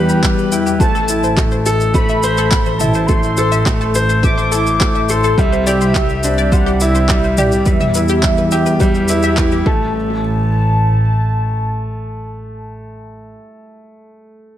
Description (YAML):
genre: piano and strings electronica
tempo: 105 BPM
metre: 4/4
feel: straight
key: A minor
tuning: A4 = 437 Hz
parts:
  - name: warm velvety synth lead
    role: melody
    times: 0.0-13.0 s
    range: D5 to D6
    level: -22 LUFS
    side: equal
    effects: chorus, ping-pong delay
  - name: felt-muted upright piano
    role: riff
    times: 0.0-14.6 s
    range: G3 to C5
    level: -18 LUFS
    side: equal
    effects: ping-pong delay
  - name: clear studio double bass section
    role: bass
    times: 0.0-11.6 s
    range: A1 to E2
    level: -18 LUFS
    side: equal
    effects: sidechain pumping
  - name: analog pluck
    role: arpeggios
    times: 0.1-10.2 s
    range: G4 to B5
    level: -23 LUFS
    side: left 3 dB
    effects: chorus, phaser, sidechain pumping, ping-pong delay
  - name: organic electronic drum kit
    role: drums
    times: 0.1-9.6 s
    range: handclaps, shaker, toms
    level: -22 LUFS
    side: equal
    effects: overdrive
  - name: electronic kick drum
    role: drums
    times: 0.2-9.8 s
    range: none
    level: -16 LUFS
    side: equal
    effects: overdrive
room: light reverb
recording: none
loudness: -12 LUFS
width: side -12 dB against mid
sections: 0.0-10.0 A section; 10.0-12.2 B section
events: drop 0.0-10.0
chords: 0.0 Em; 0.8 Am; 5.4 Cadd9; 7.7 Em; 9.7 N.C.